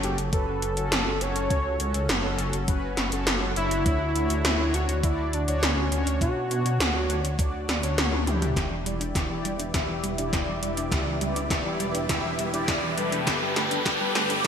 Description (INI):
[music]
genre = synthwave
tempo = 102 BPM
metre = 4/4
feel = straight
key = E dorian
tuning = A4 = 440 Hz
[part]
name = wide unison lead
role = melody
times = 0.0-7.9 s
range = C#4 to C#5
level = -30 LUFS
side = equal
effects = ping-pong delay
[part]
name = mellow synth brass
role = stabs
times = 0.0-14.5 s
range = C#4 to E5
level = -31 LUFS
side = left 2 dB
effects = chorus, cassette tape, ping-pong delay
[part]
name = dark detuned saw bass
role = bass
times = 0.0-14.5 s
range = E1 to B2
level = -30 LUFS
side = equal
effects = tube saturation
[part]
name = 80s electronic pad drums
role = drums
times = 0.0-14.5 s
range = hi-hat, snare drum, toms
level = -28 LUFS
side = equal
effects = gated reverb on snare and toms, high-pass filter on hats, high-pass filter on snare, high-pass filter on toms, gated reverb
[part]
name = electronic kick drum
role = drums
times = 0.3-14.5 s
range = none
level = -27 LUFS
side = equal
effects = none
[part]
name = lush unison pad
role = sustained chords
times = 9.4-14.5 s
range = B4 to D6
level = -32 LUFS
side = equal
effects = chorus, phaser, sidechain pumping
[part]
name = thumb-piano-like synth pluck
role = arpeggios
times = 8.6-14.5 s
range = D3 to D4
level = -34 LUFS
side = right 2 dB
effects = chorus, ping-pong delay
[part]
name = riser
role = sound effects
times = 10.7-14.5 s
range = none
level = -32 LUFS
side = equal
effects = none
[sound]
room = moderate lush hall reverb, RT60 2.0 s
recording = bright 1980s-style digital production, high-pass filter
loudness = -23 LUFS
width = side -8 dB against mid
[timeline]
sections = 0.0-8.6 A section; 8.6-14.5 B section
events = drum fill 8.0-8.6, 8.6-14.5; filter sweep on analog synth pad 8.6-14.5; filter sweep on synth arpeggio sound 8.6-14.5; filter sweep 8.6-14.5; riser 10.7-14.5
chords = 0.0 F#m; 3.9 Dmaj7; 8.6 Em7; 13.3 Gadd9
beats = 0.33 0.92 | 1.51 2.10 2.68 3.27 | 3.86 4.45 5.04 5.62 | 6.21 6.80 7.39 7.98 | 8.57 9.15 9.74 10.33 | 10.92 11.51 12.10 12.68 | 13.27 13.86 14.45